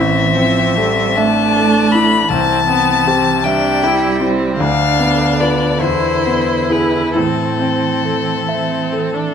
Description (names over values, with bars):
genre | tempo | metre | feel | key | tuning
classical, slow romantic movement for piano quartet | 44-54 BPM (dotted quarters) | 6/8 | rubato | A minor | A4 = 439 Hz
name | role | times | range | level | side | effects
clear violin | melody | 0.0-9.3 s | A4 to B5 | -17 LUFS | left 7 dB | none
warm cello | second line | 0.0-9.3 s | D3 to A3 | -20 LUFS | right 6 dB | none
clear grand piano | accompaniment | 0.0-9.3 s | A1 to E5 | -18 LUFS | left 2 dB | none
rich viola | accompaniment | 0.0-9.3 s | B3 to E4 | -20 LUFS | right 3 dB | none
room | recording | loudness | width
moderate recital hall reverb, RT60 1.5 s | close, detailed microphones | -12 LUFS | side -7 dB against mid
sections
0.0-9.3 A section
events
none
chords
0.0 Am; 2.3 C; 4.6 Bdim/D; 5.8 E; 7.2 Am